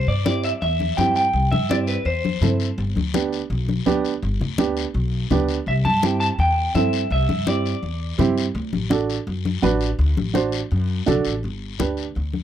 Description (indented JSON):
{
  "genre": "latin, cumbia",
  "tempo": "166 BPM",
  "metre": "4/4",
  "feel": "straight",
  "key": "G major",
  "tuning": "A4 = 440 Hz",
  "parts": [
    { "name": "clean electric guitar", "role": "melody", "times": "0.0-2.6, 5.7-8.3 s", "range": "B4 to A5", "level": "-22 LUFS", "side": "equal", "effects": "spring reverb, slapback echo" },
    { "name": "upright bass", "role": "bass", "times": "0.0-12.4 s", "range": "G1 to G2", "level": "-23 LUFS", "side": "left 1 dB", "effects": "none" },
    { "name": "dark upright piano", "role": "accompaniment", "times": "0.3-12.1 s", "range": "B3 to C5", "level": "-22 LUFS", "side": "right 6 dB", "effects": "none" },
    { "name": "congas", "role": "percussion", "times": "0.3-12.4 s", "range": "none", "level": "-25 LUFS", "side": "left 6 dB", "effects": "none" },
    { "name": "guiro", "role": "percussion", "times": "0.3-12.4 s", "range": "none", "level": "-35 LUFS", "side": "left 16 dB", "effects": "none" }
  ],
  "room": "little or no reverb",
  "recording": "dry, close 1970s-style studio recording",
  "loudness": "-19 LUFS",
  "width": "side -10 dB against mid",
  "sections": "0.0-11.4 A section",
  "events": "none",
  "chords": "0.0 C; 2.8 G; 5.7 Cadd9; 8.6 D; 11.4 G"
}